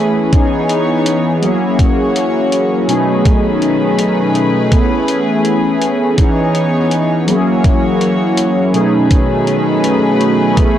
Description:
vaporwave; 82 BPM; 4/4; swing 54% on 16ths; A4 = 439 Hz
mellow synth brass; accompaniment; 0.0-10.8 s; B2 to G#4; -13 LUFS; equal; analog chorus, tape echo
warm studio string section; sustained chords; 0.0-10.8 s; D#3 to C#5; -18 LUFS; equal
electronic hi-hat; drums; 0.3-10.7 s; -24 LUFS; left 1 dB
electronic kick drum; drums; 0.3-10.7 s; -12 LUFS; equal
light reverb, digital ambience; dry, gritty hardware recording, transformer saturation, cassette tape; -11 LUFS; side -10 dB against mid
0.0-10.8 A section
0.3 C#m9; 1.4 F#7; 2.9 B13; 4.7 Amaj9; 6.2 C#m9; 7.3 F#7; 8.7 B13

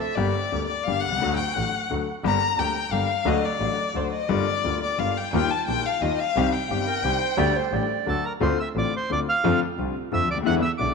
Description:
tango; 175 BPM; 3/4; rubato; G minor; A4 = 438 Hz
mellow clarinet; second line; 0.0-0.2, 6.9-8.4 s; A4 to D5; -29 LUFS; right 11 dB
warm violin; second line; 0.0-8.1 s; C5 to Bb5; -25 LUFS; left 6 dB
warm concert grand piano; accompaniment; 0.2-10.9 s; G1 to G4; -26 LUFS; left 8 dB
clear double bass; bass; 0.2-10.9 s; G1 to F2; -29 LUFS; right 4 dB
bandoneon; melody; 8.1-10.9 s; A4 to F#6; -26 LUFS; right 3 dB
wet echo chamber reverb, RT60 2.2 s; 1960s-style stereo with parts hard left and right; -22 LUFS; side -4 dB against mid
0.2-8.4 A section; 8.4-10.9 B section
violin solo 0.2-8.4
0.2 Gm; 1.2 D; 2.2 Gm; 3.3 D; 4.3 Gm7; 5.3 Ebadd9; 6.4 Cm; 7.4 Dsus4; 8.1 D; 8.4 Dm7; 9.4 F6

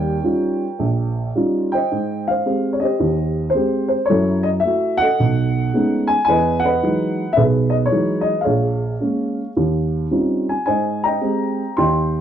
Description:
solo jazz; 109 BPM; 4/4; swing 69% on 8ths, rubato; Ab major; A4 = 442 Hz
dark upright piano; solo; 0.0-12.2 s; Bb1 to C6; -16 LUFS; equal
moderate studio reverb, RT60 0.7 s; -16 LUFS; side -9 dB against mid
0.0-1.9 A section; 1.9-12.2 B section
0.0 Eb9; 1.9 Abmaj7; 4.1 Gbm7; 5.2 B13; 6.3 Emaj9; 8.5 Bbm7; 9.6 Eb13; 10.7 Abmaj7

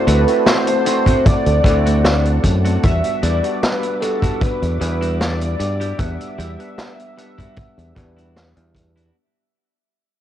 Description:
vaporwave; 76 BPM; 4/4; straight; E minor; A4 = 441 Hz
warm velvety synth lead; melody; 0.0-8.8 s; A4 to E5; -22 LUFS; equal; chorus, tape echo
bell-like tine electric piano; accompaniment; 0.0-9.2 s; G3 to F#5; -23 LUFS; right 1 dB; lush chorus, vintage 12-bit sampler grit, tape echo
soft string machine; sustained chords; 0.0-9.1 s; G3 to D6; -31 LUFS; equal; phaser, ensemble chorus
clean electric guitar; riff; 0.1-9.2 s; G3 to G4; -27 LUFS; equal; wide subtle chorus
fingered electric bass; bass; 0.1-9.1 s; D2 to G2; -18 LUFS; equal; tube saturation
vintage drum kit; drums; 0.1-9.1 s; hi-hat, snare drum; -21 LUFS; equal
kick drum; drums; 1.1-8.9 s; -17 LUFS; equal
light reverb, small room ambience; -15 LUFS; side -11 dB against mid
0.0-9.2 A section
fade-out 0.7-9.2
0.0 D7; 2.8 Em9

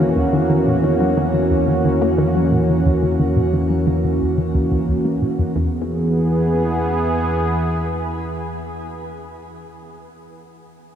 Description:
ambient, sequencer-driven space music; 89 BPM; 4/4; straight; E lydian; A4 = 440 Hz
sweeping resonant pad; sustained chords; 0.0-9.0 s; E3 to G#4; -19 LUFS; right 1 dB; chorus, shimmer reverb
resonant blip pluck; riff; 0.0-5.9 s; D#2 to A#3; -21 LUFS; equal; chorus, ping-pong delay
analog drone; bass; 0.0-7.5 s; E2; -25 LUFS; equal; chorus
wet huge ambient reverb, RT60 7.9 s; -16 LUFS; side -9 dB against mid
0.0-5.6 A section; 5.6-8.3 B section
filter sweep on synth arpeggio sound 0.0-5.6
0.0 D#m7; 5.6 E

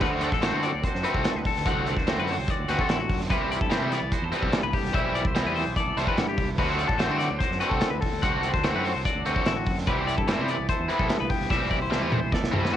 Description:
math rock and midwest emo; 146 BPM; 4/4; straight; A4 = 440 Hz
twangy electric guitar; accompaniment; 0.0-12.8 s; G2 to A4; -33 LUFS; right 8 dB; cassette tape
twelve-string electric guitar; arpeggios; 0.0-12.8 s; E4 to F#5; -30 LUFS; left 8 dB; cassette tape
biting overdriven guitar; riff; 0.0-12.8 s; D3 to F#4; -28 LUFS; equal; cassette tape
growling fingered electric bass; bass; 0.0-12.8 s; A1 to D3; -32 LUFS; equal; overdrive
loose indie drum kit; drums; 0.0-12.7 s; crash cymbal, hi-hat, kick drum, snare drum, toms; -27 LUFS; equal; cassette tape
studio ambience; home recording on cassette; -23 LUFS; side -10 dB against mid
0.0-12.8 A section
drum fill 11.5-12.8
0.0 D7; 3.3 Cmaj7; 6.6 D7; 9.9 Cmaj7

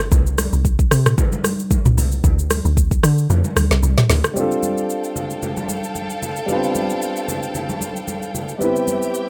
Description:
amapiano; 113 BPM; 4/4; swing 55% on 16ths; A4 = 441 Hz
deep log drum bass; bass; 0.0-4.2 s; C2 to D3; -19 LUFS; equal
afro-pop drum kit; drums; 0.1-9.3 s; hi-hat, kick drum, rim click, shaker, snare drum, toms; -21 LUFS; equal
congas; percussion; 0.1-9.0 s; -29 LUFS; equal
warm concert grand piano; accompaniment; 4.3-9.3 s; G3 to B4; -24 LUFS; equal
warm studio string section; sustained chords; 4.4-9.3 s; G4 to A5; -31 LUFS; equal; sidechain pumping
small room ambience; rough home demo mix; -19 LUFS; mono
0.0-4.4 A section; 4.4-9.3 B section
drop 0.0-4.4; kick muted 3.3-4.4
0.1 N.C.; 4.4 G9sus4; 8.6 Cmaj7

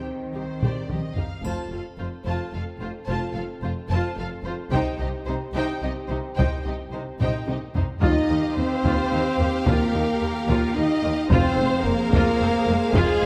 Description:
cinematic, epic orchestral film score; 109 BPM; 3/4; straight; C dorian; A4 = 440 Hz
clear symphonic violin section; melody; 0.0-13.3 s; Ab4 to A5; -35 LUFS; equal
warm symphonic violin section; second line; 0.0-13.3 s; Eb4 to F5; -36 LUFS; equal
rich symphonic viola section; accompaniment; 0.0-13.3 s; Ab3 to Ab4; -33 LUFS; equal
warm French horn section; sustained chords; 0.0-13.3 s; Ab3 to A4; -29 LUFS; equal
rich symphonic cello section; bass; 0.0-13.3 s; Eb2 to Eb3; -33 LUFS; equal
rich symphonic double bass section; bass; 0.3-13.3 s; F1 to Eb2; -32 LUFS; equal
taiko ensemble; drums; 0.6-13.3 s; -28 LUFS; equal
triangle; percussion; 1.4-2.5 s; -54 LUFS; equal
timpani; percussion; 11.3-12.1 s; F2; -34 LUFS; equal
moderate scoring stage reverb, RT60 2.0 s; -24 LUFS; mono
0.0-1.4 A section; 1.4-8.0 B section; 8.0-13.3 C section
drum fill 0.6-1.4, 7.2-8.0
0.0 Cm; 1.4 F; 4.7 Cm; 8.0 Ebadd9; 11.3 Fm

